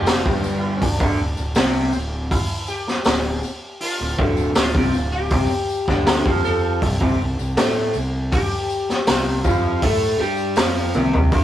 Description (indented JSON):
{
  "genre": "psychedelic rock",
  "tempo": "80 BPM",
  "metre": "4/4",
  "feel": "straight",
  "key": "unclear",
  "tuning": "A4 = 440 Hz",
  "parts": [
    { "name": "sitar", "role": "melody", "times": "0.0-11.4 s", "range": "D4 to A4", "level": "-27 LUFS", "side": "left 2 dB", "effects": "none" },
    { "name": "electric guitar through a small old amp", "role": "riff", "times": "0.0-11.4 s", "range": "D2 to A4", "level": "-22 LUFS", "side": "equal", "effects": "phaser" },
    { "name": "fuzz fingered electric bass", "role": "bass", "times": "0.0-11.4 s", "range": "D1 to A2", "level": "-25 LUFS", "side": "equal", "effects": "overdrive" },
    { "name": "raw garage drum kit", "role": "drums", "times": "0.1-11.4 s", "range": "hi-hat, kick drum, snare drum, toms", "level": "-20 LUFS", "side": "equal", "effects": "none" },
    { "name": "tambourine", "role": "percussion", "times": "0.1-11.4 s", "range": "none", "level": "-41 LUFS", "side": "left 5 dB", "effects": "none" }
  ],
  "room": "light reverb",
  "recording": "rough rehearsal-room recording",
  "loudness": "-18 LUFS",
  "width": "side -12 dB against mid",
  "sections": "0.0-11.4 A section",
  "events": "drum fill 10.9-11.3",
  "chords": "0.0 Dm; 5.3 C6"
}